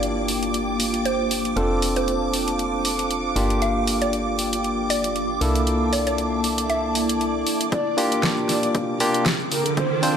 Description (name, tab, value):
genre	deep house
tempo	117 BPM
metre	4/4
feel	swing 55% on 16ths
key	G dorian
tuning	A4 = 440 Hz
part	mallet-like synth pluck	melody	0.0-7.2 s	A4 to F5	-28 LUFS	right 1 dB	chorus, tape echo
part	hollow soft pad	sustained chords	0.0-10.2 s	Bb3 to D6	-29 LUFS	right 2 dB	chorus, sidechain pumping
part	barky tine electric piano	stabs	0.0-10.2 s	Bb3 to C5	-24 LUFS	left 1 dB	ping-pong delay
part	woody FM bass	bass	0.0-7.4 s	F1 to C2	-29 LUFS	equal	sidechain pumping
part	deep house drum kit	drums	0.0-10.1 s	hi-hat, snare drum	-26 LUFS	equal	overdrive, studio reverb
part	granular cloud pad	texture	0.0-10.2 s	Bb3 to A5	-30 LUFS	equal	built-in reverb, sidechain pumping
part	string machine, violins	texture	0.0-10.2 s	D6	-33 LUFS	equal	ensemble chorus, sidechain pumping
part	breathy flute-like synth lead	melody	7.7-10.1 s	Bb4 to D5	-27 LUFS	equal	lush chorus
part	electronic kick drum	drums	7.7-9.9 s	none	-29 LUFS	equal	overdrive, high-pass filter on kick, studio reverb
part	riser	sound effects	8.4-10.2 s	none	-27 LUFS	right 3 dB	none
room	moderate plate reverb, RT60 1.7 s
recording	none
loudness	-20 LUFS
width	side -8 dB against mid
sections	0.0-7.7 A section; 7.7-10.2 B section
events	filter sweep on tine electric piano 0.0-7.7; filter sweep on analog synth pad 0.0-7.7; build-up 7.7-10.2; riser 8.4-10.2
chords	0.0 Gm7; 1.6 F6; 3.4 Gm7; 5.4 C13; 7.7 Gm7